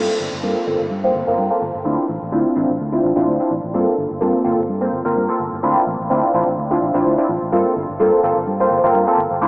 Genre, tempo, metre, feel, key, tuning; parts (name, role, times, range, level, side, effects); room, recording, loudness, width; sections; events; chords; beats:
house; 127 BPM; 4/4; swing 55% on 16ths; G dorian; A4 = 439 Hz
funky polysynth comp; accompaniment; 0.0-9.5 s; Bb3 to C5; -16 LUFS; equal; chorus, phaser, low-pass filter
vintage muted fingered electric bass; bass; 0.0-9.5 s; G1 to G2; -26 LUFS; equal; low-pass filter
wet cathedral reverb, RT60 6.4 s; dreamy mix soaked in reverb, small speaker sound; -15 LUFS; side -28 dB against mid
0.0-9.5 A section
0.0 Gm11; 1.9 Dm9; 3.7 Gm11; 5.6 Dm9; 7.5 Gm11
0.44 0.91 1.38 | 1.86 2.33 2.80 3.27 | 3.75 4.22 4.69 5.16 | 5.64 6.11 6.58 7.05 | 7.53 8.00 8.47 8.94 | 9.41